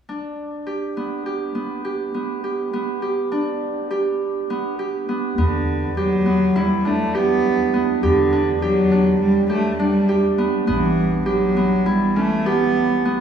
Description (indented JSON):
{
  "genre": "contemporary instrumental, chamber music in an uneven meter",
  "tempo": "204 BPM (eighths)",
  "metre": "9/8",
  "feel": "straight",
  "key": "E dorian",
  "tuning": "A4 = 442 Hz",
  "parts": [
    { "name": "Celtic harp", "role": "arpeggios", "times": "0.1-13.2 s", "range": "B3 to G4", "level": "-20 LUFS", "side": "right 2 dB", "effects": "none" },
    { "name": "rich cello", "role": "melody", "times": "5.4-13.1 s", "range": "D3 to B3", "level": "-19 LUFS", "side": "equal", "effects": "none" },
    { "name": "upright bass", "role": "bass", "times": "5.4-13.2 s", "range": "A1 to E2", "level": "-28 LUFS", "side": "left 1 dB", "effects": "none" }
  ],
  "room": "wet cathedral reverb, RT60 6.5 s",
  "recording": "recorded in a church or concert hall, small room ambience, faint mains hum",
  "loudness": "-18 LUFS",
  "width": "side -8 dB against mid",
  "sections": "0.1-5.4 A section; 5.4-13.2 B section",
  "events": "none",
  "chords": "0.1 Bm; 5.4 Em7; 10.7 A9",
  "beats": "| 0.08 0.37 0.67 0.96 1.26 1.55 1.85 2.14 2.44 | 2.73 3.03 3.32 3.62 3.91 4.21 4.50 4.79 5.09 | 5.38 5.68 5.97 6.27 6.56 6.85 7.15 7.44 7.74 | 8.03 8.33 8.62 8.92 9.21 9.51 9.80 10.10 10.39 | 10.69 10.98 11.28 11.57 11.87 12.16 12.46 12.76 13.05"
}